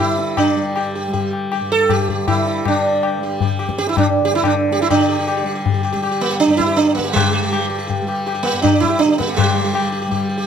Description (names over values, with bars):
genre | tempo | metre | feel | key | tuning
indian classical, Hindustani | 160 BPM | 3/4 | straight | unclear | A4 = 440 Hz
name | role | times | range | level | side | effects
sitar | melody | 0.0-10.5 s | G3 to A4 | -17 LUFS | right 4 dB | none
tanpura | drone | 0.0-10.5 s | G2 to G3 | -25 LUFS | equal | none
tabla | percussion | 0.2-10.2 s | none | -20 LUFS | left 8 dB | none
room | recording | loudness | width
light reverb | close, detailed microphones | -15 LUFS | side -8 dB against mid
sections
0.0-4.9 A section; 4.9-10.5 B section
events
speeding up 0.0-10.5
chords
none